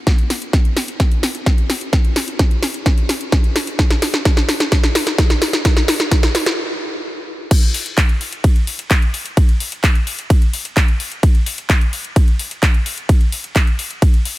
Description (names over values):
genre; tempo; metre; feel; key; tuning
EDM; 129 BPM; 4/4; straight; none; none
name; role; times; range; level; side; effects
big-room dance drum kit; drums; 0.1-14.3 s; crash cymbal, handclaps, hi-hat, ride cymbal, snare drum; -19 LUFS; equal; none
electronic kick drum; drums; 0.1-14.1 s; none; -13 LUFS; equal; none
room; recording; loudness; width
light reverb; none; -14 LUFS; side -17 dB against mid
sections
0.0-7.5 A section; 7.5-14.4 B section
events
build-up 0.0-7.5; drum fill 0.0-6.6; stop 6.6-7.5; drop 7.5-14.4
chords
none